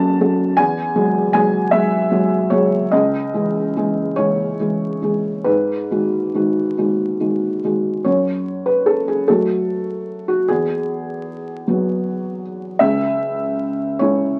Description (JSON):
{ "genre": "neoclassical minimalist piano", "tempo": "45-53 BPM (dotted quarters)", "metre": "6/8", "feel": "rubato", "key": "E major", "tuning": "A4 = 441 Hz", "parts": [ { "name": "felt-muted upright piano", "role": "solo", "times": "0.0-14.4 s", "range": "C#2 to A5", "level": "-19 LUFS", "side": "equal", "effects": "none" } ], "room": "moderate studio ambience, RT60 0.5 s", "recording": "very old 78 rpm record, vinyl crackle", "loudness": "-19 LUFS", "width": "mono", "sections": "0.0-8.1 A section; 8.1-14.4 B section", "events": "none", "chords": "0.0 F#m; 0.6 Eadd9; 2.9 C#m; 5.5 G#m7; 8.1 F#m; 10.5 Eadd9; 12.8 C#m" }